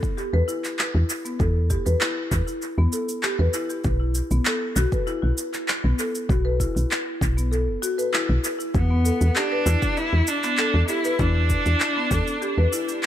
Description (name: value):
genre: organic downtempo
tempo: 98 BPM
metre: 4/4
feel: straight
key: E minor pentatonic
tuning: A4 = 440 Hz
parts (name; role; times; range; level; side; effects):
- marimba with medium mallets; arpeggios; 0.0-13.1 s; B3 to B4; -27 LUFS; left 1 dB; tape echo
- electronic kick drum; drums; 0.0-12.2 s; none; -25 LUFS; equal; small room ambience
- electronic shaker and handclaps; drums; 0.0-13.1 s; none; -27 LUFS; equal; small room ambience, analog delay
- woody FM bass; bass; 0.3-12.7 s; F#1 to E2; -21 LUFS; equal; sidechain pumping
- warm cello; melody; 8.8-13.0 s; B3 to E4; -24 LUFS; equal; tape echo
room: light reverb, small room ambience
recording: echo-heavy mix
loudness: -20 LUFS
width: side -11 dB against mid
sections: 0.0-13.1 A section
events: none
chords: 0.0 E5; 3.8 B5; 8.7 E7(no3)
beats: 0.17 0.79 | 1.40 2.01 2.62 3.23 | 3.85 4.46 5.07 5.68 | 6.29 6.91 7.52 8.13 | 8.74 9.36 9.97 10.58 | 11.19 11.80 12.42 13.03